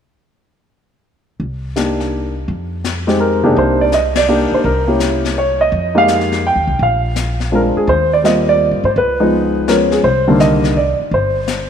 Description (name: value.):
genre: jazz piano trio.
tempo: 167 BPM.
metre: 3/4.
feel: swing 66% on 8ths.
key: C minor.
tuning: A4 = 441 Hz.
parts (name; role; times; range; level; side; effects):
upright bass; bass; 1.4-11.7 s; G1 to Ab2; -20 LUFS; equal; none.
jazz brush drum kit; drums; 1.4-11.7 s; brushed snare drum, hi-hat, ride cymbal, snare drum; -25 LUFS; left 9 dB; none.
warm baby grand piano; melody; 1.8-11.7 s; C3 to G5; -13 LUFS; equal; none.
room: moderate echo chamber reverb, RT60 2.4 s.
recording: 1960s-style stereo.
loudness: -12 LUFS.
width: side -8 dB against mid.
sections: 1.4-3.6 A section; 3.6-11.7 B section.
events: band accent 4.1.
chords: 1.4 Cm7; 2.5 Fm7; 3.6 Cm9; 5.7 Fm11; 6.8 Bb9; 7.9 Eb6; 9.0 Db9; 10.0 Cm9.